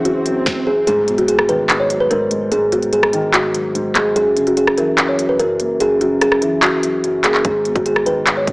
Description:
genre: hip hop, trap.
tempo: 146 BPM.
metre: 4/4.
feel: half-time.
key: G# minor.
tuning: A4 = 440 Hz.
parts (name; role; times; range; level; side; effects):
kalimba; melody; 0.0-8.5 s; F#4 to C#5; -16 LUFS; equal; low-pass filter.
dark concert grand piano; accompaniment; 0.0-8.5 s; F#2 to A#3; -21 LUFS; equal; low-pass filter.
swell and impact; sound effects; 0.0-2.5 s; none; -27 LUFS; right 1 dB; none.
trap drum kit; drums; 0.1-8.5 s; handclaps, hi-hat, kick drum, rim click, snare drum; -18 LUFS; equal; none.
warm 808-style bass; bass; 7.4-8.5 s; G#1; -32 LUFS; equal; none.
room: light reverb, studio reverb.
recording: small speaker sound.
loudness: -13 LUFS.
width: side -24 dB against mid.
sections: 0.9-8.5 A section.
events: swell 0.0-0.9; kick muted 0.9-7.4; impact 0.9-2.5.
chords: 0.0 F#7; 0.9 G#m7; 4.2 F#7; 7.4 G#m.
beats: 0.05 0.46 | 0.87 1.28 1.69 2.10 | 2.52 2.93 3.34 3.75 | 4.16 4.57 4.98 5.39 | 5.80 6.21 6.63 7.04 | 7.45 7.86 8.27.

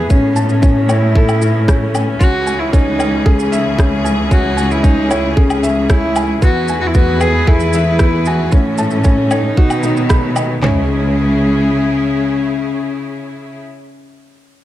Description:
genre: piano and strings electronica.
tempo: 114 BPM.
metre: 4/4.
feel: straight.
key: C# minor.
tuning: A4 = 441 Hz.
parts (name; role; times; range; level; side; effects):
clear studio string section; sustained chords; 0.0-13.6 s; C#3 to B4; -23 LUFS; equal; sidechain pumping.
felt-muted upright piano; riff; 0.0-14.6 s; B3 to B5; -19 LUFS; left 1 dB; none.
warm studio cello section; bass; 0.0-12.2 s; C#2 to B2; -18 LUFS; equal; sidechain pumping.
dark cello; melody; 0.1-13.6 s; C#4 to G#4; -18 LUFS; equal; none.
electronic shaker, woodblock and rim click; drums; 0.1-10.5 s; none; -23 LUFS; left 1 dB; none.
organic electronic drum kit; drums; 0.1-10.7 s; handclaps, kick drum, snare drum, toms; -11 LUFS; equal; none.
room: light reverb, small room ambience.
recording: dark, warm production.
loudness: -11 LUFS.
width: side -14 dB against mid.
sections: 0.0-10.6 A section; 10.6-14.6 B section.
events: drop 0.0-10.6.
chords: 0.1 A; 2.2 C#m; 6.4 E; 8.5 A; 9.6 B; 10.6 C#m.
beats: | 0.10 0.63 1.15 1.68 | 2.21 2.73 3.26 3.79 | 4.31 4.84 5.36 5.89 | 6.42 6.94 7.47 8.00 | 8.52 9.05 9.57 10.10 | 10.63 11.15 11.68 12.21 | 12.73 13.26 13.79 14.31.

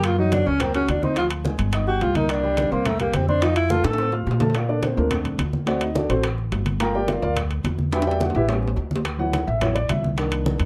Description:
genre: Afro-Cuban jazz.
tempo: 213 BPM.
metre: 4/4.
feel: straight.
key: unclear.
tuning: A4 = 443 Hz.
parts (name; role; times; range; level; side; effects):
breathy tenor saxophone; melody; 0.0-4.1 s; A3 to A4; -25 LUFS; equal; none.
dark concert grand piano; accompaniment; 0.0-10.7 s; Eb3 to G6; -27 LUFS; equal; none.
upright bass; bass; 0.0-10.7 s; G1 to Bb2; -27 LUFS; equal; none.
bongos; percussion; 0.0-10.7 s; none; -36 LUFS; equal; none.
congas; percussion; 0.0-10.7 s; none; -31 LUFS; equal; none.
timbales; percussion; 0.0-10.7 s; none; -33 LUFS; equal; none.
room: light reverb.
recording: none.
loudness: -22 LUFS.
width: mono.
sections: 0.0-4.5 A section; 4.5-10.7 A section.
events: tenor saxophone solo 0.0-4.5; drum fill 3.8-4.5, 7.9-9.1; grand piano solo 4.5-10.7.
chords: 0.0 Gb; 1.2 Ddim; 1.7 Eb69/G; 2.3 Csus2; 3.4 F; 4.5 Bbmaj7; 5.7 D7; 6.8 Gm7; 7.9 Em7; 8.5 A7; 9.1 D69.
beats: | 0.04 0.32 0.60 0.89 | 1.17 1.45 1.73 2.01 | 2.29 2.58 2.86 3.14 | 3.42 3.70 3.98 4.27 | 4.55 4.83 5.11 5.39 | 5.67 5.96 6.24 6.52 | 6.80 7.08 7.36 7.65 | 7.93 8.21 8.49 8.77 | 9.05 9.33 9.61 9.89 | 10.18 10.46.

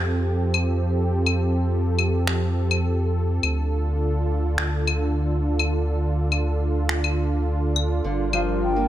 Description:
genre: folktronica.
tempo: 104 BPM.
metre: 4/4.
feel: straight.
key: unclear.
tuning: A4 = 440 Hz.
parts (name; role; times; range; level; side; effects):
warm analog pad; sustained chords; 0.0-8.9 s; D3 to Bb4; -26 LUFS; right 2 dB; chorus.
warm sub bass; bass; 0.0-8.9 s; G1 to F2; -23 LUFS; equal; none.
electronic claves and finger snaps; drums; 0.5-8.4 s; none; -26 LUFS; left 4 dB; none.
fingerpicked steel-string acoustic guitar; arpeggios; 8.0-8.9 s; D3 to Bb3; -26 LUFS; left 2 dB; none.
breathy mellow wooden flute; melody; 8.3-8.9 s; F5 to G5; -27 LUFS; equal; none.
room: light reverb, small room ambience.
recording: none.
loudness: -20 LUFS.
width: side -12 dB against mid.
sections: 0.0-8.9 A section.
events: none.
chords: 0.0 Fadd9; 3.4 Dm; 8.0 Gm7.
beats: 0.54 | 1.12 1.70 2.27 2.85 | 3.43 4.00 4.58 5.16 | 5.74 6.31 6.89 7.47 | 8.04 8.62.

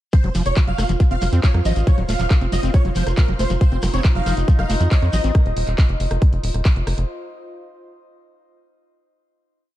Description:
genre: psychedelic trance.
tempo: 138 BPM.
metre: 4/4.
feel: straight.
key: unclear.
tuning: A4 = 440 Hz.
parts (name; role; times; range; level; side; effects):
dense compressed supersaw; melody; 0.1-5.2 s; Bb4 to F5; -28 LUFS; right 1 dB; phaser, sidechain pumping, dub echo.
overdriven acid bass; riff; 0.1-5.3 s; F3 to F4; -27 LUFS; equal; distortion, auto-pan, sidechain pumping, tape echo.
electronic kick drum; drums; 0.1-6.7 s; none; -14 LUFS; equal; none.
techno drum kit; drums; 0.1-7.1 s; handclaps, hi-hat, rim click; -30 LUFS; equal; none.
shekere; percussion; 0.1-5.3 s; none; -37 LUFS; left 4 dB; none.
airy breathy pad; texture; 0.1-7.1 s; F4 to F5; -31 LUFS; right 1 dB; chorus, sidechain pumping.
vowel-sweep wobble bass; second line; 0.2-4.9 s; C4 to F4; -38 LUFS; right 4 dB; none.
tight sequencer bass; bass; 0.2-7.1 s; Eb1 to F2; -20 LUFS; equal; none.
overtone-sweeping drone; sustained chords; 3.9-5.4 s; Eb4; -31 LUFS; left 1 dB; chorus, built-in reverb, sidechain pumping.
room: digital ambience.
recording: dark, warm production.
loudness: -16 LUFS.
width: side -14 dB against mid.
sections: 0.1-7.1 drop.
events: drop 0.1-7.1.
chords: 0.1 F5.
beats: | 0.13 0.57 1.00 1.44 | 1.87 2.31 2.74 3.17 | 3.61 4.04 4.48 4.91 | 5.35 5.78 6.22 6.65.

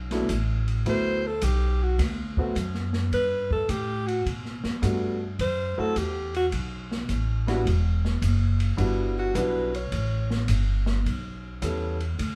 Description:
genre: jazz, small-group swing and bop.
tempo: 106 BPM.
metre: 4/4.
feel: swing 68% on 8ths.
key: D major.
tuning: A4 = 438 Hz.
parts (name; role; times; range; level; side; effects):
upright bass; bass; 0.0-12.4 s; E1 to B2; -28 LUFS; equal; none.
warm grand piano; accompaniment; 0.1-12.0 s; F#3 to A4; -31 LUFS; equal; none.
open jazz drum kit; drums; 0.1-12.4 s; hi-hat, kick drum, ride cymbal, snare drum; -36 LUFS; equal; none.
warm alto saxophone; melody; 0.9-10.5 s; F#4 to C#5; -30 LUFS; equal; none.
room: moderate large studio reverb, RT60 1.2 s.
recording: band playing live in one room.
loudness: -26 LUFS.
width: mono.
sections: 0.0-12.4 A section.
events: none.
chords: 0.0 D6; 0.9 D13; 3.1 Gmaj7; 5.4 F#m7b5; 6.5 B5; 7.7 Em9; 9.9 A9.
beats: 0.29 | 0.86 1.42 1.99 2.55 | 3.12 3.69 4.25 4.82 | 5.38 5.95 6.52 7.08 | 7.65 8.22 8.78 9.35 | 9.92 10.48 11.05 11.62 | 12.18.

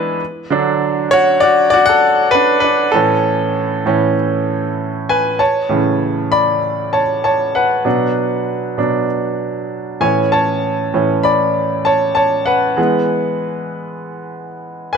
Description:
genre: pop.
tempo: 98 BPM.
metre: 4/4.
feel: straight.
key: A major.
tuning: A4 = 440 Hz.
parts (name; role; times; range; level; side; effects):
bright grand piano; solo; 0.0-15.0 s; A2 to B5; -13 LUFS; equal; none.
room: moderate plate reverb, RT60 3.0 s.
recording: none.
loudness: -13 LUFS.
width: side -6 dB against mid.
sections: 0.0-5.4 A section; 5.4-15.0 B section.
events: grand piano solo 0.0-5.4, 5.4-15.0.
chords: 0.2 D6; 2.9 A; 7.9 Bm; 10.0 A; 12.8 E.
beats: | 0.50 1.11 1.73 2.34 | 2.95 3.56 4.17 4.79 | 5.40 6.01 6.63 7.24 | 7.86 8.47 9.09 9.70 | 10.32 10.93 11.55 12.17 | 12.78 13.40 14.01 14.63.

